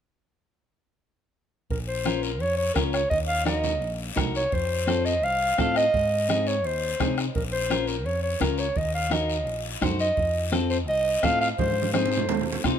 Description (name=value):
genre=latin, cumbia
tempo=170 BPM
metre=4/4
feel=straight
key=Bb minor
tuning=A4 = 440 Hz
part: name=mellow clarinet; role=melody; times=1.7-12.6 s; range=Bb4 to F5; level=-25 LUFS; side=equal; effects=none
part: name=picked electric bass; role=bass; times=1.7-12.8 s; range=Bb1 to C3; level=-30 LUFS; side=equal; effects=none
part: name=bombo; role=percussion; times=1.7-12.8 s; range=none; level=-30 LUFS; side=right 1 dB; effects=none
part: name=congas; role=percussion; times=1.7-12.7 s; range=none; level=-31 LUFS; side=right 8 dB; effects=none
part: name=guiro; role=percussion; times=1.7-12.8 s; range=none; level=-36 LUFS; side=left 6 dB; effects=none
part: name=clean electric guitar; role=accompaniment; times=2.1-12.8 s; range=C4 to C5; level=-30 LUFS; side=left 4 dB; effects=none
room=moderate plate reverb, RT60 3.7 s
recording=minimal, uncompressed stereo recording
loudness=-22 LUFS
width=side -8 dB against mid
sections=1.7-12.8 A section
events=drum fill 11.6-12.8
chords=1.7 Bbm; 3.1 Ebm; 4.5 F; 5.9 Ab; 7.4 Bbm; 8.8 Ebm; 10.2 F7; 11.6 Ab